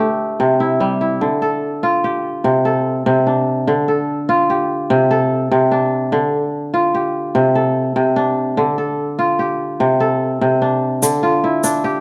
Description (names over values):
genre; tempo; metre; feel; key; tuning
west african traditional, West African string and xylophone music; 98 BPM (dotted quarters); 12/8; straight; D minor; A4 = 438 Hz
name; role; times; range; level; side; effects
kora; arpeggios; 0.0-12.0 s; C3 to B4; -17 LUFS; equal; none
tube shaker; percussion; 11.0-11.7 s; none; -23 LUFS; equal; none
room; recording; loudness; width
moderate recital hall reverb, RT60 1.4 s; dark, warm production; -17 LUFS; mono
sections
0.0-1.2 A section; 1.2-11.0 B section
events
none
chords
0.0 C; 1.2 Dm; 2.4 C5; 3.7 Dm; 4.9 C5; 6.1 Dm; 7.4 C5; 8.6 Dm; 9.8 C5; 11.0 Dm